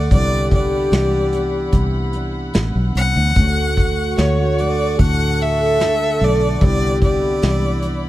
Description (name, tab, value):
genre	acoustic folk-pop ballad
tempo	74 BPM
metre	4/4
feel	straight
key	unclear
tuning	A4 = 440 Hz
part	rich violin	melody	0.0-8.1 s	C#5 to F#5	-22 LUFS	equal	none
part	fingerpicked steel-string acoustic guitar	accompaniment	0.0-8.1 s	D2 to F#4	-24 LUFS	right 3 dB	none
part	warm chamber string section	sustained chords	0.0-8.1 s	E4 to C#6	-32 LUFS	equal	none
part	fingered electric bass	bass	0.0-8.1 s	A1 to D2	-19 LUFS	equal	none
part	mellow French horn	second line	0.1-8.0 s	F#4 to A4	-23 LUFS	left 2 dB	none
part	vintage brush drum kit	drums	0.1-8.0 s	hi-hat, kick drum, snare drum	-18 LUFS	equal	none
room	little or no reverb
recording	none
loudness	-15 LUFS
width	side -15 dB against mid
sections	0.0-8.1 A section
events	none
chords	0.1 Cmaj9; 3.4 Dmaj7; 6.6 Cmaj9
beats	| 0.11 0.92 1.73 2.55 | 3.37 4.18 4.99 5.80 | 6.62 7.42